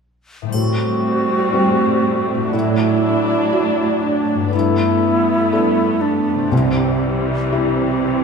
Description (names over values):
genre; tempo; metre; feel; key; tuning
cinematic, emotional film score for orchestra; 60 BPM; 4/4; rubato; A dorian; A4 = 441 Hz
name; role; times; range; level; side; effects
concert harp; arpeggios; 0.4-8.2 s; G2 to A4; -26 LUFS; left 8 dB; none
bright alto flute; melody; 0.5-8.2 s; C4 to F#4; -19 LUFS; equal; none
felt-muted upright piano; accompaniment; 0.5-8.2 s; C2 to A4; -22 LUFS; left 1 dB; none
rich studio viola section; accompaniment; 0.5-8.2 s; E3 to D4; -21 LUFS; right 1 dB; none
warm symphonic cello section; bass; 0.5-8.2 s; G2 to C3; -23 LUFS; right 3 dB; none
triangle; percussion; 0.5-2.5 s; none; -34 LUFS; left 2 dB; none
room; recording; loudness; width
wet recital hall reverb, RT60 1.6 s; recorded in a church or concert hall, faint mains hum; -15 LUFS; side -5 dB against mid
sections
0.5-8.2 A section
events
none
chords
0.5 Am7; 2.5 Dadd9/A; 4.5 Gadd9; 6.5 C